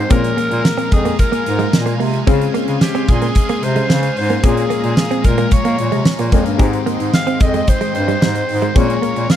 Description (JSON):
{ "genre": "1980s-style pop", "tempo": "111 BPM", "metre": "4/4", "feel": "straight", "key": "unclear", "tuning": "A4 = 440 Hz", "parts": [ { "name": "growling alto saxophone", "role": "melody", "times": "0.0-9.4 s", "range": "G4 to F5", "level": "-21 LUFS", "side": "equal", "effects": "slapback echo" }, { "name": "clear concert grand piano", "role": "accompaniment", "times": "0.0-9.4 s", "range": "Ab2 to Bb4", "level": "-23 LUFS", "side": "left 8 dB", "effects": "none" }, { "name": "thick fuzz guitar", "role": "accompaniment", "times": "0.0-9.4 s", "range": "Ab2 to Db4", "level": "-26 LUFS", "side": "equal", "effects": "distortion, ensemble chorus" }, { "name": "lush unison pad", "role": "sustained chords", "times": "0.0-9.4 s", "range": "Ab3 to C6", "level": "-26 LUFS", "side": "left 2 dB", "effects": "chorus, phaser" }, { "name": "direct-recorded clean electric guitar", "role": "riff", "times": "0.0-9.2 s", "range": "G3 to C4", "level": "-22 LUFS", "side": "right 6 dB", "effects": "wide subtle chorus, slapback echo" }, { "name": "clear bass clarinet", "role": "bass", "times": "0.0-9.3 s", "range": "F2 to Bb3", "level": "-20 LUFS", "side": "equal", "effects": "none" }, { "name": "huge arena drum kit", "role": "drums", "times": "0.1-9.4 s", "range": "hi-hat, kick drum, snare drum, tambourine", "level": "-15 LUFS", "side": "equal", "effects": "none" } ], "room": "light reverb", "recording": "dry, close 1970s-style studio recording", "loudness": "-13 LUFS", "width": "side -10 dB against mid", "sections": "0.0-9.4 A section", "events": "none", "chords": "0.1 Bbm7; 2.3 Dbmaj7; 4.4 Bbm7; 6.6 Abmaj7; 8.8 Bbm7" }